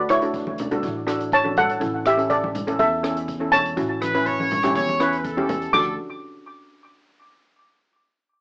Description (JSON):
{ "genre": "calypso", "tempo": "122 BPM", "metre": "4/4", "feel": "straight", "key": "D major", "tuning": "A4 = 440 Hz", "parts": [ { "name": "steel pan", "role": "accompaniment", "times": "0.0-6.0 s", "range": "C#4 to B4", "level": "-25 LUFS", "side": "equal", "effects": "cassette tape" }, { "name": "upright bass", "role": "bass", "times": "0.0-6.0 s", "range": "A1 to E2", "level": "-32 LUFS", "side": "equal", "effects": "none" }, { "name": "steel pan", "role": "melody", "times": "0.1-6.0 s", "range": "E4 to D6", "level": "-20 LUFS", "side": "equal", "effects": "analog delay" }, { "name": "street-band drum kit", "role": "drums", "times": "0.1-5.9 s", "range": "crash cymbal, hi-hat, kick drum, rim click", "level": "-36 LUFS", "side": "equal", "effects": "cassette tape" }, { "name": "congas", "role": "percussion", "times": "0.5-6.0 s", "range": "none", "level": "-30 LUFS", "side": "equal", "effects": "none" }, { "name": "brilliant horn section", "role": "second line", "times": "4.0-6.0 s", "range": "A4 to C#5", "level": "-23 LUFS", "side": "equal", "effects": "cassette tape" } ], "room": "light reverb", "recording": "home recording on cassette, AM radio sound", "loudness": "-19 LUFS", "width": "side -33 dB against mid", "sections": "0.0-5.7 A section; 5.7-7.7 B section", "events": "none", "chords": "0.0 A; 5.7 D", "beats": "0.34 0.83 1.32 | 1.81 2.31 2.80 3.29 | 3.78 4.27 4.76 5.25 | 5.73" }